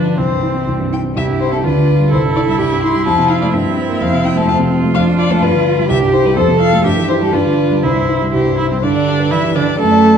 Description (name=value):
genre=quick classical-period movement for piano quartet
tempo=126 BPM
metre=2/4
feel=straight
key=C major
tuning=A4 = 437 Hz
part: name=rich violin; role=melody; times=0.0-10.2 s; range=A4 to C6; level=-18 LUFS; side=left 8 dB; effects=none
part: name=rich cello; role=second line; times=0.0-10.2 s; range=D3 to A4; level=-18 LUFS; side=right 5 dB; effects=none
part: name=clear viola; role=accompaniment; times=0.0-10.2 s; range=C4 to A4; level=-19 LUFS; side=right 2 dB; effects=none
part: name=warm grand piano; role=accompaniment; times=0.0-10.2 s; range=C2 to D5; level=-15 LUFS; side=equal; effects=none
room=wet recital hall reverb, RT60 1.6 s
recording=dark, warm production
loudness=-12 LUFS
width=side -7 dB against mid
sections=0.0-1.2 A section; 1.2-8.8 A section; 8.8-10.2 B section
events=none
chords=0.2 C; 1.6 G7/D; 2.1 C; 3.1 Fmaj7; 3.5 C7/G; 4.0 F; 4.9 Dm/F; 5.4 G7; 5.9 C; 6.4 F; 6.8 A7(no3)/G; 7.3 G7; 7.8 C; 8.8 G